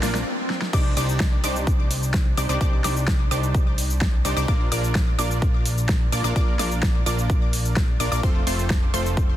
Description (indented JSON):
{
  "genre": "EDM, festival progressive house",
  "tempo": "128 BPM",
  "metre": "4/4",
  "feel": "straight",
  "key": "unclear",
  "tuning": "A4 = 440 Hz",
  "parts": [
    { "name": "supersaw stab", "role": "riff", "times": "0.0-9.4 s", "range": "A3 to D5", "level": "-28 LUFS", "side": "right 1 dB", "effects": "sidechain pumping, ping-pong delay" },
    { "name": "fat analog bass", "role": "bass", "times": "0.0-9.4 s", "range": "F1 to C2", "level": "-26 LUFS", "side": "equal", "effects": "sidechain pumping" },
    { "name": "big-room dance drum kit", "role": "drums", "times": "0.0-9.3 s", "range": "crash cymbal, hi-hat, shaker, snare drum", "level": "-29 LUFS", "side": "equal", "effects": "overdrive" },
    { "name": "riser and swell", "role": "sound effects", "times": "0.0-0.7 s", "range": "none", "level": "-33 LUFS", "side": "left 2 dB", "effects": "none" },
    { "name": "wide unison pluck", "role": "arpeggios", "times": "0.7-9.4 s", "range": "C6 to D6", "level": "-32 LUFS", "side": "moving between left 4 dB and right 4 dB", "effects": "auto-pan, sidechain pumping, ping-pong delay" },
    { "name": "electronic kick drum", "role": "drums", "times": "0.7-9.3 s", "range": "none", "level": "-21 LUFS", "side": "equal", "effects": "none" }
  ],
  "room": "digital ambience",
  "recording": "dense, heavily limited modern master",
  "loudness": "-19 LUFS",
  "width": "side -12 dB against mid",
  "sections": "0.7-9.4 A section",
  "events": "drum fill 0.0, 0.5; riser 0.0; swell 0.0-0.7; stop 0.3-0.7; drop 0.7-9.4",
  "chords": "0.0 Bb; 0.7 Cmadd9; 4.5 Bb; 8.2 F",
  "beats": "0.27 | 0.73 1.20 1.67 2.14 | 2.61 3.08 3.55 4.01 | 4.48 4.95 5.42 5.89 | 6.36 6.83 7.30 7.76 | 8.23 8.70 9.17"
}